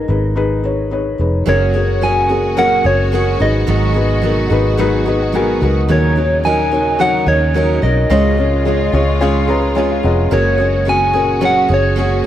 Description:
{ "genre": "pop", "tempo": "108 BPM", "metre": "4/4", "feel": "straight", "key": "unclear", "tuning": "A4 = 439 Hz", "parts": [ { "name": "soft struck synth lead", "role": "melody", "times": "0.0-12.3 s", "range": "Db5 to Ab5", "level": "-17 LUFS", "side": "equal", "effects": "chorus, tape echo" }, { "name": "felt-muted upright piano", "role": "accompaniment", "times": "0.0-12.3 s", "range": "Ab2 to Db6", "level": "-18 LUFS", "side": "left 3 dB", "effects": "tape echo" }, { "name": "vintage muted fingered electric bass", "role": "bass", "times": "0.0-12.2 s", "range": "F1 to Eb2", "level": "-17 LUFS", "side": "equal", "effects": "none" }, { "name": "warm studio string section", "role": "sustained chords", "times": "1.5-12.3 s", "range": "Bb2 to Gb4", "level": "-26 LUFS", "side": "equal", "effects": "none" }, { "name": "fingerpicked steel-string acoustic guitar", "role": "riff", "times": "1.5-12.3 s", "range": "Ab2 to Bb4", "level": "-21 LUFS", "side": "right 7 dB", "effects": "tape echo" } ], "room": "moderate spring reverb, RT60 1.1 s, studio ambience", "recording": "echo-heavy mix", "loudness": "-12 LUFS", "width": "side -11 dB against mid", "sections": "0.0-1.5 A section; 1.5-12.3 B section", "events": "felt piano fill 4.8-5.9, 8.7-10.3", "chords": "0.0 Abm; 1.5 Gbadd9; 3.4 Abm7; 5.9 Ebm7; 8.1 Db; 10.3 Gbadd9" }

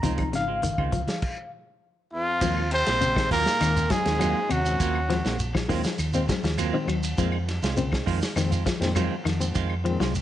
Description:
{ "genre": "afrobeat", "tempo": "101 BPM", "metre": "4/4", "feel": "straight", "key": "Eb dorian", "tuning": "A4 = 439 Hz", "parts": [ { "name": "barky reed electric piano", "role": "accompaniment", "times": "0.0-10.0 s", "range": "Bb2 to Bb5", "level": "-31 LUFS", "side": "left 3 dB", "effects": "overdrive, fast tremolo" }, { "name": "semi-hollow electric guitar", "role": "arpeggios", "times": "0.0-10.2 s", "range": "C3 to Gb3", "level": "-31 LUFS", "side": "left 6 dB", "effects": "spring reverb" }, { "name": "semi-hollow electric guitar", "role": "stabs", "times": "0.0-10.2 s", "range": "Eb3 to F4", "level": "-33 LUFS", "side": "right 9 dB", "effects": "none" }, { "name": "hollow-body short-scale fingered electric bass", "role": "bass", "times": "0.0-10.2 s", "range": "Ab1 to F2", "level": "-28 LUFS", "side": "equal", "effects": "none" }, { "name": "vintage drum kit", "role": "drums", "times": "0.0-10.2 s", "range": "crash cymbal, hi-hat, kick drum, ride cymbal, snare drum", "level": "-30 LUFS", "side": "equal", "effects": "none" }, { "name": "congas", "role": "percussion", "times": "0.0-1.2 s", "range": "none", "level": "-36 LUFS", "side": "right 2 dB", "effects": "none" }, { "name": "shekere", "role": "percussion", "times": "0.0-10.2 s", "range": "none", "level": "-34 LUFS", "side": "right 2 dB", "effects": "none" }, { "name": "claves", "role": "percussion", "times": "0.2-9.8 s", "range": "none", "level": "-40 LUFS", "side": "left 5 dB", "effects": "none" }, { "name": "breathy trumpet", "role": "melody", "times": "2.1-5.4 s", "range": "F4 to C5", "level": "-25 LUFS", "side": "equal", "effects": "none" }, { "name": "bright trombone", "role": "second line", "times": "2.1-5.4 s", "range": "F3 to C4", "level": "-35 LUFS", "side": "right 4 dB", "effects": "none" }, { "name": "growling baritone saxophone", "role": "second line", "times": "2.1-5.4 s", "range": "F2 to C3", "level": "-34 LUFS", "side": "left 3 dB", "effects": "slapback echo" } ], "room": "light reverb, studio reverb", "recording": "nothing above 10.3 kHz", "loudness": "-22 LUFS", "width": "side -12 dB against mid", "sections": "0.0-2.4 A section; 2.4-10.2 B section", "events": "reed electric piano solo 0.0-2.4; stop 1.2-2.4", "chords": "0.0 Dbmaj9; 2.4 Ebm69; 7.2 Fm7" }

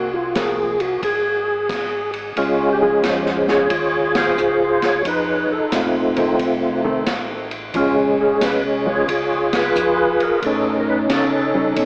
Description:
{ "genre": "soul jazz organ trio", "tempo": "89 BPM", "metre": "4/4", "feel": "swing 66% on 8ths", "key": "unclear", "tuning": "A4 = 438 Hz", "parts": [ { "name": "percussive tonewheel organ", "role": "melody", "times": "0.0-11.9 s", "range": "Ab3 to Db5", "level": "-20 LUFS", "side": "equal", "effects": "overdrive, chorus vibrato, slow rotary speaker, dub echo" }, { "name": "hollow-body jazz guitar", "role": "accompaniment", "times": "0.0-11.8 s", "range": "Eb3 to D#4", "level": "-29 LUFS", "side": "equal", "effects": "dub echo" }, { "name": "mellow tonewheel organ", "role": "bass", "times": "0.0-11.9 s", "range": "Ab1 to C#3", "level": "-35 LUFS", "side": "equal", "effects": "slow rotary speaker" }, { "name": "swinging big-band drum kit", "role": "drums", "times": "0.4-11.9 s", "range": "crash cymbal, hi-hat, kick drum, ride cymbal, snare drum", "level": "-28 LUFS", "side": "equal", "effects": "none" } ], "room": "light reverb, small room ambience", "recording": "echo-heavy mix, AM radio sound", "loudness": "-19 LUFS", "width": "mono", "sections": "0.0-2.4 A section; 2.4-11.9 B section", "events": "stop 1.7-2.4; band accent 4.0-4.4, 9.4-9.8", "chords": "0.0 Ab69; 1.0 N.C.; 2.4 Dbmaj7; 5.1 F7; 7.7 Bbm7; 10.4 A7#11" }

